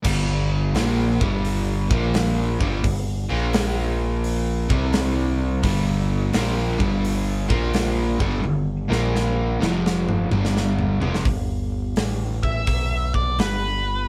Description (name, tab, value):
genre	blues rock power trio and southern rock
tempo	86 BPM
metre	4/4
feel	swing 66% on 8ths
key	unclear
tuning	A4 = 440 Hz
part	overdriven semi-hollow guitar	riff	0.0-11.3 s	F2 to C4	-25 LUFS	equal	none
part	big rock drum kit	drums	0.0-13.6 s	crash cymbal, hi-hat, kick drum, snare drum, toms	-28 LUFS	equal	none
part	growling picked electric bass	bass	0.1-14.1 s	F1 to C2	-27 LUFS	equal	overdrive
part	octave-fuzz lead guitar	melody	12.4-14.1 s	B4 to E5	-27 LUFS	equal	wah, distortion
room	moderate small room reverb, RT60 0.5 s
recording	band playing live in one room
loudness	-22 LUFS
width	mono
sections	0.0-11.3 A section; 11.3-14.1 B section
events	drum fill 8.4-11.3; lead electric guitar solo 11.3-14.1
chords	0.0 G5; 1.8 Bb5; 2.5 G5; 3.2 Bb5; 4.6 C5; 5.6 G5; 7.4 Bb5; 8.1 G5; 8.8 Bb5; 9.5 F5; 10.2 G5; 11.3 G